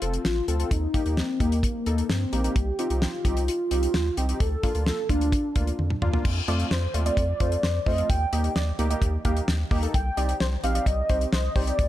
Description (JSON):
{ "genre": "synth-pop", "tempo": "130 BPM", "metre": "4/4", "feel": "straight", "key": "unclear", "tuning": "A4 = 440 Hz", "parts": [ { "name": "warm velvety synth lead", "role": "melody", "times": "0.0-11.9 s", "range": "Bb3 to G5", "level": "-28 LUFS", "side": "equal", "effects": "chorus" }, { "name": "warm analog keys", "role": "accompaniment", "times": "0.0-11.8 s", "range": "A3 to A4", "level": "-32 LUFS", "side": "equal", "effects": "chorus" }, { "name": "round analog bass", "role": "bass", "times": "0.0-11.9 s", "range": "F1 to G2", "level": "-26 LUFS", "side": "equal", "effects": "none" }, { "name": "damped 70s drum kit", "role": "drums", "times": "0.0-11.9 s", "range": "crash cymbal, hi-hat, kick drum, snare drum, toms", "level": "-27 LUFS", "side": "equal", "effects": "none" }, { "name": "warbly dusty pluck", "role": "second line", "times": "6.5-11.6 s", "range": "C5 to F5", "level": "-34 LUFS", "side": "equal", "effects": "chorus, tape echo" } ], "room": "small room ambience", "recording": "none", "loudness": "-22 LUFS", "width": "side -13 dB against mid", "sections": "0.0-6.3 A section; 6.3-11.9 B section", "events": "drum fill 5.8-6.3", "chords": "0.0 F; 0.7 Eb; 2.6 Cm; 4.4 Bbmaj7/D; 6.3 F; 8.1 Eb; 9.9 Cm" }